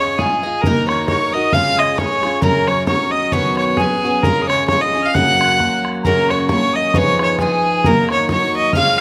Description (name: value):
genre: celtic folk, Celtic polka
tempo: 133 BPM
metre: 2/4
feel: swing 56% on 8ths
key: F# major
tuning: A4 = 440 Hz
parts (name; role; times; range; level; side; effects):
- rich fiddle; melody; 0.0-9.0 s; G#4 to F#5; -19 LUFS; equal; none
- bright reedy wooden whistle; second line; 0.0-9.0 s; Ab5 to F#6; -26 LUFS; equal; slapback echo
- picked steel-string acoustic guitar; accompaniment; 0.0-9.0 s; F#2 to D#5; -22 LUFS; equal; slapback echo
- bodhran; percussion; 0.0-8.9 s; none; -24 LUFS; equal; none
room: little or no reverb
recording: recorded outdoors, with no room sound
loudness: -16 LUFS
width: mono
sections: 0.0-6.0 A section; 6.0-9.0 A section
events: none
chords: 0.0 C#add9; 0.6 D#m; 1.5 C#; 2.4 F#; 3.3 Badd9; 4.2 C#; 5.1 F#; 6.9 Fm7b5; 7.9 D#m